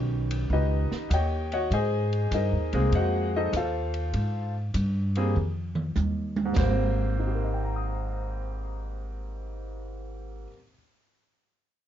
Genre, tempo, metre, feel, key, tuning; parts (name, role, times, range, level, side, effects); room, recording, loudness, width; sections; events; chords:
jazz piano trio; 99 BPM; 4/4; swing 68% on 8ths; Ab major; A4 = 440 Hz
warm concert grand piano; melody; 0.0-10.7 s; Ab2 to Eb6; -30 LUFS; left 1 dB
upright bass; bass; 0.0-10.4 s; Ab1 to Ab2; -28 LUFS; equal
open jazz drum kit; drums; 0.3-6.8 s; hi-hat, kick drum, ride cymbal, snare drum, toms; -31 LUFS; right 2 dB
little or no reverb; dark, warm production, nothing above 7.5 kHz; -25 LUFS; side -10 dB against mid
0.0-6.6 A section; 6.6-9.0 B section
drum fill 5.4-6.6
0.0 Eb7alt; 1.7 Abmaj9